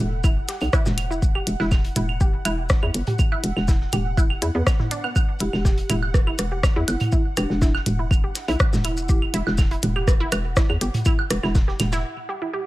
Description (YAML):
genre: minimal techno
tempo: 122 BPM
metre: 4/4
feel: straight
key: E minor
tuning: A4 = 440 Hz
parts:
  - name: hollow knocking FM bass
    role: bass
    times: 0.0-12.0 s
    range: E1 to E2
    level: -25 LUFS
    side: equal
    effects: sidechain pumping
  - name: swarming drone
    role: texture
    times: 0.0-12.0 s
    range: F#5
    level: -37 LUFS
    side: right 3 dB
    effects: built-in reverb, sidechain pumping
  - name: resonant blip pluck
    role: riff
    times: 0.2-12.6 s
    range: B3 to G4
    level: -30 LUFS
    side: right 1 dB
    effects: chorus, sidechain pumping, tape echo
  - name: electronic kick drum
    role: drums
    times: 0.2-11.7 s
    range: none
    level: -19 LUFS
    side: equal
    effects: studio reverb
  - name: vintage drum kit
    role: drums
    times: 0.2-12.0 s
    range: hi-hat, shaker, snare drum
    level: -37 LUFS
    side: left 1 dB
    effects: sidechain pumping on hats, high-pass filter on hats, studio reverb, high-pass filter on snare, sidechain pumping on perc, high-pass filter on perc, high-pass filter on room
  - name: booming analog drum machine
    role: percussion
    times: 0.2-11.9 s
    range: claves, rim click, toms, woodblock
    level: -27 LUFS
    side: right 2 dB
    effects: studio reverb
  - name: minimal click drum kit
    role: drums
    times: 0.5-11.9 s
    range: hi-hat, rim click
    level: -25 LUFS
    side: left 1 dB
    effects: studio reverb
  - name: vibraphone with soft mallets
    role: melody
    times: 5.4-9.5 s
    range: D4 to G4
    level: -32 LUFS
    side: right 1 dB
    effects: tape echo
room: little or no reverb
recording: none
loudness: -19 LUFS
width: side -17 dB against mid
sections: 0.0-12.7 A section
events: break 12.0-12.7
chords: 0.0 Em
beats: 0.24 0.73 | 1.22 1.72 2.21 2.70 | 3.19 3.68 4.17 4.67 | 5.16 5.65 6.14 6.63 | 7.12 7.62 8.11 8.60 | 9.09 9.58 10.08 10.57 | 11.06 11.55 12.04 12.54